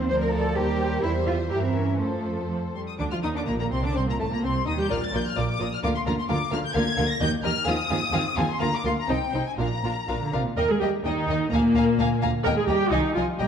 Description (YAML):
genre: quick classical-period movement for string orchestra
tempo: 127 BPM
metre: 2/4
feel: rubato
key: Bb major, Eb major from 6.7 s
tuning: A4 = 441 Hz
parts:
  - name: warm studio violin section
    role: melody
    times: 0.0-13.5 s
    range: C5 to Bb6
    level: -31 LUFS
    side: left 4 dB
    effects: none
  - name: rich studio viola section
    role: accompaniment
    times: 0.0-13.5 s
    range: E3 to Bb4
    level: -27 LUFS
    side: left 1 dB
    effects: none
  - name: rich studio cello section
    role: bass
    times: 0.0-13.5 s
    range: A2 to C5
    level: -29 LUFS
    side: right 2 dB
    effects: none
  - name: rich studio double bass section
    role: bass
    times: 0.0-13.5 s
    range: A1 to G2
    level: -29 LUFS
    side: right 3 dB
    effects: none
  - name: rich studio violin section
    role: second line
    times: 0.1-13.5 s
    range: A3 to Ab5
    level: -31 LUFS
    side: left 4 dB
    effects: none
room: moderate scoring stage reverb, RT60 1.6 s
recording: dark, warm production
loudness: -22 LUFS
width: side -8 dB against mid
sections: 0.0-3.0 A section; 3.0-10.6 B section; 10.6-13.5 C section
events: none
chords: 0.1 Bb/D; 0.6 Cm7/Eb; 1.0 Edim7; 2.0 F; 3.0 Bb; 4.0 Am7b5; 4.9 Bb; 5.8 Bb/D; 7.2 Eb; 7.7 Fm7/Eb; 8.6 Bb/D; 9.1 Cm; 9.6 Bb; 10.6 Eb; 11.5 Bb7/D; 12.5 Eb; 12.9 Ab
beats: | 0.09 0.56 | 1.03 1.50 | 2.00 2.50 | 3.00 3.48 | 3.96 4.43 | 4.90 5.36 | 5.83 6.29 | 6.75 7.21 | 7.67 8.14 | 8.61 9.09 | 9.59 10.09 | 10.57 11.05 | 11.52 11.99 | 12.45 12.92 | 13.40